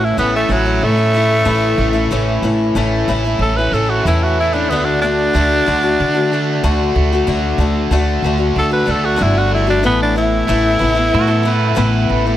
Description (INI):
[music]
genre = rock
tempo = 93 BPM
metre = 4/4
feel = straight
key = D major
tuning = A4 = 440 Hz
[part]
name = raspy tenor saxophone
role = melody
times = 0.0-12.1 s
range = F#3 to B4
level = -17 LUFS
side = equal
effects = none
[part]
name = picked old ladder-braced acoustic guitar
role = accompaniment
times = 0.0-12.4 s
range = A2 to F#4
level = -20 LUFS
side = left 6 dB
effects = none
[part]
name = biting overdriven guitar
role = riff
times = 0.0-12.4 s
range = A2 to F#4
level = -20 LUFS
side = right 2 dB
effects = none
[part]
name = upright bass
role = bass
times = 0.0-12.4 s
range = G1 to D3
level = -18 LUFS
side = right 1 dB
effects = none
[part]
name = pedal steel guitar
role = second line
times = 11.1-12.2 s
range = F#4 to B4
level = -22 LUFS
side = right 10 dB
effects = none
[sound]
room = light reverb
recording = none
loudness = -13 LUFS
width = side -12 dB against mid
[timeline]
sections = 0.0-12.4 A section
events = tenor saxophone solo 0.0-12.4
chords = 0.0 A; 4.7 D; 9.8 Asus2